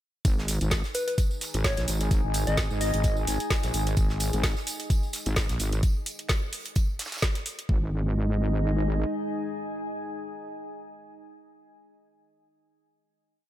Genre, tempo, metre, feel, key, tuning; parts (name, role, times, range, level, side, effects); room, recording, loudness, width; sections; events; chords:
bass house; 129 BPM; 4/4; swing 55% on 16ths; A4 = 440 Hz
dark analog pad; sustained chords; 0.2-11.3 s; D#3 to D#5; -35 LUFS; left 1 dB; lush chorus, sidechain pumping
wobble bass; bass; 0.2-9.0 s; G#1 to A#1; -26 LUFS; equal; chorus, overdrive, sidechain pumping
electronic kick drum; drums; 0.2-7.8 s; -25 LUFS; equal
garage drum kit; drums; 0.2-7.7 s; hi-hat, snare drum; -31 LUFS; equal
modern studio drum kit; drums; 0.2-7.6 s; hi-hat, snare drum, tambourine; -41 LUFS; right 2 dB; high-pass filter on hats, high-pass filter on snare, high-pass filter on perc, high-pass filter on room
deep dark ambient pad; texture; 1.0-11.5 s; D#4 to G#5; -36 LUFS; left 1 dB; chorus, built-in reverb, sidechain pumping
tambourine; percussion; 0.3-5.8 s; -39 LUFS; right 2 dB
soft struck synth lead; melody; 0.9-3.2 s; B4 to D#5; -34 LUFS; left 3 dB; chorus, tremolo, ping-pong delay
small room reverb; -25 LUFS; side -13 dB against mid
0.2-7.7 drop; 7.7-11.4 final chord
drop 0.2-7.7
0.2 G#5